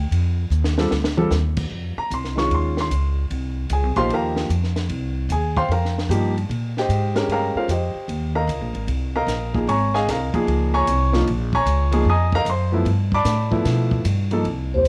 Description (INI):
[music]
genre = modal jazz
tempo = 151 BPM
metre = 4/4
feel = swing 66% on 8ths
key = F minor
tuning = A4 = 440 Hz
[part]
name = warm grand piano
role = accompaniment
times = 0.0-14.4 s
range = Eb3 to Eb6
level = -24 LUFS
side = equal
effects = none
[part]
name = upright bass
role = bass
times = 0.0-14.9 s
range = Ab1 to B2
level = -24 LUFS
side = equal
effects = none
[part]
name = compact cocktail drum kit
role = drums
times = 0.1-14.9 s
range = crash cymbal, hi-hat, kick drum, ride cymbal, snare drum, toms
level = -32 LUFS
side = equal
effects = none
[part]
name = vibraphone with soft mallets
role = melody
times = 14.7-14.9 s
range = C5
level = -20 LUFS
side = equal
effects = none
[part]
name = breathy bass clarinet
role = second line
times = 14.7-14.9 s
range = Eb2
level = -24 LUFS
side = equal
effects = none
[sound]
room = small room ambience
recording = none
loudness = -21 LUFS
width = mono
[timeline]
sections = 0.0-1.7 A section; 1.7-14.5 A section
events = drum fill 0.5-1.3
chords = 0.0 Csus4; 1.7 F9sus4; 8.1 Eb9sus4; 12.9 G13